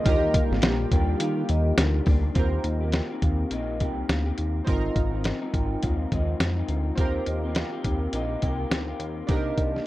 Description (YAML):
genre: indie pop, bedroom pop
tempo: 104 BPM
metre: 4/4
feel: swing 60% on 16ths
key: Eb major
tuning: A4 = 441 Hz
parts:
  - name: hollow-body jazz guitar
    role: melody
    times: 0.0-1.8 s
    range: Eb5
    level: -31 LUFS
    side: equal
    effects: none
  - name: vibraphone with medium mallets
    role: second line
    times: 0.0-9.9 s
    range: C5 to G5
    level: -34 LUFS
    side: right 2 dB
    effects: wide subtle chorus, slapback echo
  - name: chorused retro synth keys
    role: accompaniment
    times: 0.0-9.9 s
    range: D3 to Bb4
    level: -33 LUFS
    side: right 4 dB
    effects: cassette tape
  - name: electric guitar through a small old amp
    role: accompaniment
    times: 0.0-9.9 s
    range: Ab2 to G4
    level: -32 LUFS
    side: left 5 dB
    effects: analog chorus, vibrato effect
  - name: lush unison pad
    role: sustained chords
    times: 0.0-2.3 s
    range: G3 to G4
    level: -34 LUFS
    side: left 2 dB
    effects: chorus
  - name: chorused synth bass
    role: bass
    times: 0.1-9.8 s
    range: Ab1 to Eb3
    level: -27 LUFS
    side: equal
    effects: none
  - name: lo-fi sampler-style drum kit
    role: drums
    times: 0.1-9.8 s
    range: hi-hat, kick drum, snare drum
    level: -25 LUFS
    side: equal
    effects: none
room: moderate small room reverb, RT60 0.6 s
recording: rough home demo mix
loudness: -23 LUFS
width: side -16 dB against mid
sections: 0.0-2.4 A section; 2.4-9.9 B section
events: none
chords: 0.1 Ebmaj7; 2.4 Eb6; 4.7 Ab6; 7.0 Eb6; 9.3 Cm9